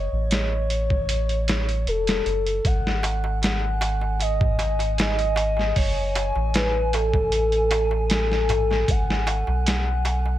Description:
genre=trip hop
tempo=77 BPM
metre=4/4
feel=straight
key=unclear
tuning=A4 = 442 Hz
part: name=pure breathy sine lead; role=melody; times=0.0-10.4 s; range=A4 to F#5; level=-25 LUFS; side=left 1 dB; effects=wide subtle chorus, dub echo
part: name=soft dub sub bass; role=bass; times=0.0-10.4 s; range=E1 to B1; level=-24 LUFS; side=equal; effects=tube saturation
part: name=trip hop sampler-style drum kit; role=drums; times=0.3-10.2 s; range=hi-hat, kick drum, snare drum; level=-25 LUFS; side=equal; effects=none
part: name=warbly tape-like pad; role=sustained chords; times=3.6-10.4 s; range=G#5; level=-33 LUFS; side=right 1 dB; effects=chorus, built-in reverb
part: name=darbuka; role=percussion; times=2.6-10.4 s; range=none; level=-32 LUFS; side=right 1 dB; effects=none
room=light reverb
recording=none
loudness=-20 LUFS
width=side -13 dB against mid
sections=0.0-10.4 A section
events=none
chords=0.0 F#m7; 2.6 G#5; 5.8 F#madd9; 8.9 G#m7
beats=0.31 1.09 1.87 | 2.65 3.43 4.21 4.99 | 5.77 6.54 7.32 8.10 | 8.88 9.66

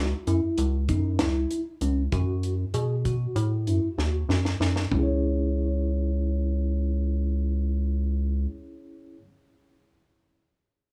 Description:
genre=progressive instrumental, band music in an uneven meter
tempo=194 BPM (eighths)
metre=9/8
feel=straight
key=C# minor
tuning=A4 = 439 Hz
part: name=tine electric piano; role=arpeggios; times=0.0-9.2 s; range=C#4 to C#5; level=-33 LUFS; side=equal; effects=digital delay
part: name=rubbery square bass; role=bass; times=0.0-8.5 s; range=C#2 to B2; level=-27 LUFS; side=equal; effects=none
part: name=deep reggae drum kit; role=drums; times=0.3-5.1 s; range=hi-hat, kick drum, snare drum, toms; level=-31 LUFS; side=equal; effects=none
room=light reverb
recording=small room ambience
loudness=-26 LUFS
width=mono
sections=0.0-4.9 A section; 4.9-7.7 B section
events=drum fill 4.0-4.9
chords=0.0 C#m; 2.1 N.C.; 4.9 C#m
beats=0.27 0.58 0.89 1.20 1.51 1.82 | 2.13 2.44 2.74 3.05 3.36 3.67 3.98 4.29 4.60 | 4.91 5.22 5.53 5.84 6.15 6.46 6.77 7.08 7.39

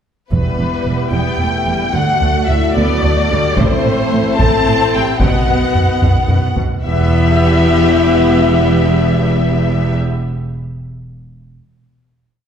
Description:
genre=cinematic, epic orchestral film score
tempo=74 BPM (dotted quarters)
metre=6/8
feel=straight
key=E minor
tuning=A4 = 444 Hz
part: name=warm symphonic violin section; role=melody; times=0.3-9.9 s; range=B4 to A5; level=-22 LUFS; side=left 3 dB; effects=none
part: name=dark symphonic violin section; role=second line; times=0.3-10.0 s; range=B4 to A5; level=-20 LUFS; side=left 4 dB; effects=none
part: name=clear studio viola section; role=accompaniment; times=0.3-10.0 s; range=G3 to G4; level=-22 LUFS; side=right 1 dB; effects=none
part: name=clear trombone section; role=sustained chords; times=0.3-9.9 s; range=D#3 to B3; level=-25 LUFS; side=right 3 dB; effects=none
part: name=mellow French horn section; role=sustained chords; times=0.3-10.0 s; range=B3 to A4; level=-20 LUFS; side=left 4 dB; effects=none
part: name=mellow woodwind section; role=sustained chords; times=0.3-10.0 s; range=A3 to E5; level=-25 LUFS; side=left 1 dB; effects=none
part: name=dark studio double bass section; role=bass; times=0.3-10.0 s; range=E1 to D2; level=-19 LUFS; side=right 2 dB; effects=none
part: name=rich studio cello section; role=bass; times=0.3-10.0 s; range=D2 to B2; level=-19 LUFS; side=right 2 dB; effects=none
part: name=taiko ensemble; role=drums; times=0.3-6.8 s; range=none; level=-17 LUFS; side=equal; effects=none
room=wet scoring stage reverb, RT60 1.5 s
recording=heard from further back in the room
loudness=-12 LUFS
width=side -8 dB against mid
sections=0.3-6.8 theme; 6.8-10.1 final chord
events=drum fill 6.0-6.8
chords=0.3 Em; 1.9 D; 3.6 Am; 5.2 B; 6.8 Em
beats=| 0.32 1.13 | 1.95 2.76 | 3.58 4.39 | 5.21 6.02 | 6.84 7.65 | 8.46 9.28

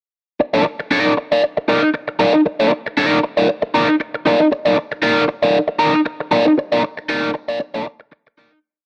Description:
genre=funk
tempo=117 BPM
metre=4/4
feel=swing 56% on 16ths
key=unclear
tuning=A4 = 436 Hz
part: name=crunchy overdriven guitar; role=solo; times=0.4-8.6 s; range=Eb4 to D5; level=-17 LUFS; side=equal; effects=wah
room=light reverb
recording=dry, close 1970s-style studio recording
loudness=-17 LUFS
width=mono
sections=0.4-8.6 breakdown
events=fade-out 6.6-8.6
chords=0.4 Bbadd11/Eb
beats=| 0.40 0.92 1.43 1.94 | 2.46 2.97 3.48 4.00 | 4.51 5.02 5.54 6.05 | 6.57 7.08 7.60 8.11

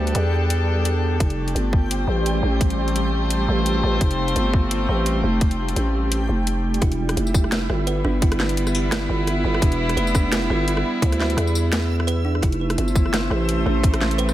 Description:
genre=half-time drum and bass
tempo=171 BPM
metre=4/4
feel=swing 55% on 16ths, half-time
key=E phrygian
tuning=A4 = 444 Hz
part: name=rich chamber string section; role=sustained chords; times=0.0-14.3 s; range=C3 to C5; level=-27 LUFS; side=left 1 dB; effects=sidechain pumping
part: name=growling 808-style bass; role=bass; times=0.0-14.3 s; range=E1 to E2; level=-21 LUFS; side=equal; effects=tube saturation
part: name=backwards swelling texture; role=texture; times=0.0-14.3 s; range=E3 to E5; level=-30 LUFS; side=right 1 dB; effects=built-in reverb
part: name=drum and bass drum kit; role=drums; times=0.1-14.3 s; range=hi-hat, rim click, snare drum, tambourine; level=-27 LUFS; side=equal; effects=overdrive, studio reverb
part: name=electronic kick drum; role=drums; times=1.2-13.9 s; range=none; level=-19 LUFS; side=equal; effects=overdrive, studio reverb
part: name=kalimba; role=arpeggios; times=6.8-14.3 s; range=D4 to B4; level=-28 LUFS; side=right 6 dB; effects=digital delay
room=light reverb, digital ambience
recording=none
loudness=-18 LUFS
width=side -14 dB against mid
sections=0.0-14.3 A section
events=none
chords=0.0 Em; 1.2 F; 6.8 Em; 12.4 F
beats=0.15 0.50 0.85 | 1.20 1.55 1.91 2.26 | 2.61 2.96 3.31 3.66 | 4.01 4.36 4.71 5.06 | 5.41 5.76 6.12 6.47 | 6.82 7.17 7.52 7.87 | 8.22 8.57 8.92 9.27 | 9.62 9.97 10.33 10.68 | 11.03 11.38 11.73 12.08 | 12.43 12.78 13.13 13.48 | 13.84 14.19

